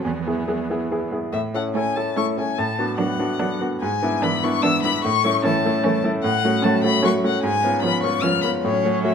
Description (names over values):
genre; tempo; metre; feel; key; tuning
quick classical-period movement for piano quartet; 148 BPM; 3/4; rubato; A major; A4 = 440 Hz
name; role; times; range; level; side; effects
warm violin; melody; 0.0-9.1 s; G#4 to E#6; -23 LUFS; left 7 dB; none
bright baby grand piano; accompaniment; 0.0-9.1 s; E2 to A4; -21 LUFS; equal; none
rich cello; second line; 0.1-9.1 s; E3 to A3; -29 LUFS; right 6 dB; none
rich viola; accompaniment; 0.1-9.1 s; B3 to D4; -30 LUFS; right 2 dB; none
room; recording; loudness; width
moderate recital hall reverb, RT60 1.6 s; close, detailed microphones; -19 LUFS; side -7 dB against mid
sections
0.0-1.3 A section; 1.3-9.1 A section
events
none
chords
0.1 E; 1.3 A; 2.6 Bm7/A; 3.8 E7/G#; 5.0 A; 6.2 F#m/A; 7.4 C#7/G#; 8.6 F#m/A